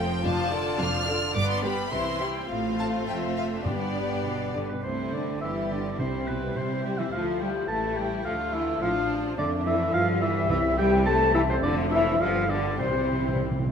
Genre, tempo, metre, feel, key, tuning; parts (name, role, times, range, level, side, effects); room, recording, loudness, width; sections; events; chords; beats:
quick classical-period movement for symphony orchestra; 105 BPM; 2/4; straight; C major; A4 = 441 Hz
rich chamber violin section; melody; 0.0-13.7 s; B3 to F6; -35 LUFS; left 2 dB
warm chamber violin section; second line; 0.0-13.7 s; G3 to G5; -33 LUFS; left 5 dB
rich chamber viola section; accompaniment; 0.0-13.7 s; D3 to F4; -33 LUFS; right 2 dB
clear chamber cello section; bass; 0.0-13.4 s; F2 to A3; -32 LUFS; right 2 dB
rich chamber double bass section; bass; 0.0-13.7 s; F1 to C3; -32 LUFS; right 2 dB
timpani; percussion; 3.7-6.8, 10.5-13.7 s; G2 to C3; -33 LUFS; right 1 dB
dark French horn section; sustained chords; 4.5-13.4 s; B3 to A4; -30 LUFS; left 4 dB
large flute ensemble; second line; 4.6-13.4 s; B4 to A5; -33 LUFS; left 2 dB
warm oboe; second line; 4.6-13.4 s; B4 to A5; -30 LUFS; equal
wet scoring stage reverb, RT60 1.9 s; -24 LUFS; side -7 dB against mid
0.0-4.8 A section; 4.8-13.7 B section
timpani fill 12.8-13.7
0.2 Dm/F; 1.4 G; 1.9 C; 2.5 F/A; 3.7 G; 4.8 C; 5.4 G; 6.0 C; 7.1 Dm; 7.7 A5; 8.3 Dm; 9.4 Dm/F; 9.9 G; 10.5 C; 11.6 Dm/F; 12.2 G7; 12.8 C
| 0.25 0.80 | 1.36 1.93 | 2.50 3.08 | 3.67 4.25 | 4.85 5.42 | 6.00 6.57 | 7.14 7.70 | 8.26 8.82 | 9.38 9.94 | 10.50 11.06 | 11.63 12.21 | 12.80 13.40